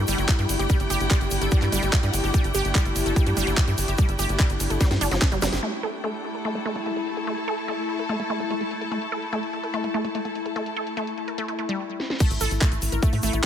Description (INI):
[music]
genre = psychedelic trance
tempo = 146 BPM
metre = 4/4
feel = straight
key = unclear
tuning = A4 = 440 Hz
[part]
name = evolving wavetable pad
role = sustained chords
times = 0.0-13.5 s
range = A3 to E4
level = -31 LUFS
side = left 3 dB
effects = chorus, built-in reverb, vintage 12-bit sampler grit, sidechain pumping
[part]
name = wide unison pluck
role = riff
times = 0.0-13.5 s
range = F#3 to Bb4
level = -29 LUFS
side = right 1 dB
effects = auto-pan, sidechain pumping, digital delay
[part]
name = tight sequencer bass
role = bass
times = 0.0-5.6, 12.3-13.4 s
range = G1 to A2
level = -26 LUFS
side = equal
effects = tube saturation
[part]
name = rich studio string section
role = texture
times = 0.0-11.8 s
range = D4 to A5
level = -31 LUFS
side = equal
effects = sidechain pumping
[part]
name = garage drum kit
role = drums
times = 0.1-13.5 s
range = crash cymbal, handclaps, hi-hat, ride cymbal, snare drum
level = -29 LUFS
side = equal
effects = low-pass filter on hats, small room ambience, low-pass filter on snare, low-pass filter on cymbals
[part]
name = egg shaker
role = percussion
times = 0.1-5.6, 12.2-13.4 s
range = none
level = -36 LUFS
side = left 1 dB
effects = none
[part]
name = electronic kick drum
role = drums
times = 0.3-5.3, 12.2-13.5 s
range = none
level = -21 LUFS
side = equal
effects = small room ambience
[part]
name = zap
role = sound effects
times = 5.4-5.5 s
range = none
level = -37 LUFS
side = right 1 dB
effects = none
[sound]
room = light reverb, digital ambience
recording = none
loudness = -22 LUFS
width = side -9 dB against mid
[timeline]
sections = 0.0-5.6 A section; 5.6-12.2 B section; 12.2-13.5 A section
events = drop 0.0-5.6, 12.2-13.5; drum fill 4.8-5.6, 12.0; band accent 5.5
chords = 0.0 G5; 5.6 A5